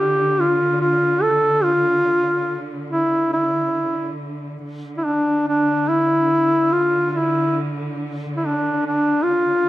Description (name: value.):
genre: caucasian folk, Caucasian lament.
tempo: 72 BPM.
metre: 4/4.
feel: rubato.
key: D minor.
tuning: A4 = 440 Hz.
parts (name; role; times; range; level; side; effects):
mellow duduk; melody; 0.0-9.7 s; D4 to A4; -17 LUFS; equal; slapback echo.
rich studio string section; drone; 0.0-9.7 s; D3; -27 LUFS; right 1 dB; none.
room: light reverb.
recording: close, detailed microphones.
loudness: -17 LUFS.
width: side -15 dB against mid.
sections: 0.0-9.7 A section.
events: none.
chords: none.